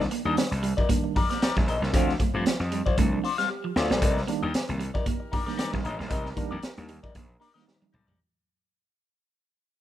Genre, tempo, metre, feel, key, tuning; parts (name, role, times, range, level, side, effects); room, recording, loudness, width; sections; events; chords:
funk; 115 BPM; 4/4; swing 56% on 16ths; C dorian; A4 = 445 Hz
clean electric guitar; accompaniment; 0.0-8.2 s; Eb4 to F5; -31 LUFS; left 5 dB; wah
clean electric guitar; riff; 0.0-8.1 s; F3 to C4; -35 LUFS; right 7 dB; tube saturation
mellow tine electric piano; stabs; 0.0-8.0 s; Eb3 to C5; -32 LUFS; right 2 dB; medium stereo tremolo
gritty slap bass; bass; 0.0-8.2 s; A1 to G2; -30 LUFS; equal; overdrive
raw garage drum kit; drums; 0.0-8.2 s; hi-hat, kick drum, snare drum, toms; -27 LUFS; equal
warm horn section; second line; 5.1-7.9 s; Eb4 to Bb4; -46 LUFS; right 2 dB
small room ambience; rough home demo mix; -24 LUFS; side -12 dB against mid
0.0-4.0 A section; 4.0-8.2 B section
drum fill 3.5-4.0, 7.7-8.2; fade-out 4.0-8.2
0.0 Cm9; 1.9 Dm7; 4.0 Cm9